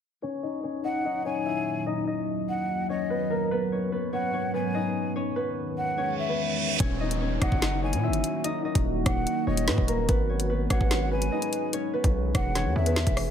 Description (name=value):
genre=hip hop, drill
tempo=146 BPM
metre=4/4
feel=half-time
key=Eb phrygian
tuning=A4 = 441 Hz
part: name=concert harp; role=melody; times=0.2-13.3 s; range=Bb3 to Fb5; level=-30 LUFS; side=left 2 dB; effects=low-pass filter
part: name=deep dark ambient pad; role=sustained chords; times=1.2-13.3 s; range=Eb2 to Cb5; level=-32 LUFS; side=right 2 dB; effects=chorus, built-in reverb, tremolo, low-pass filter
part: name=breathy mellow jazz flute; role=second line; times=0.8-13.3 s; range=Eb5 to Ab5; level=-32 LUFS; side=left 1 dB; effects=tape echo
part: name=reverse cymbal and downlifter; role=sound effects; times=6.2-10.1 s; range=none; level=-34 LUFS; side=right 5 dB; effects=none
part: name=distorted 808-style bass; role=bass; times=6.8-13.3 s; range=Eb1 to Bb2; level=-28 LUFS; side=equal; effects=distortion
part: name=drill drum kit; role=drums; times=6.8-13.3 s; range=hi-hat, kick drum, rim click, snare drum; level=-26 LUFS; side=equal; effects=overdrive
room=light reverb, digital ambience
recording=none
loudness=-24 LUFS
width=side -8 dB against mid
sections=0.2-6.8 A section; 6.8-13.3 B section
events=filter sweep 0.2-6.8; reverse cymbal 6.2-6.8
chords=0.2 Ebm; 3.5 Abm7; 5.2 Emaj7; 6.8 Ebm; 10.1 Abm7; 11.7 Emaj7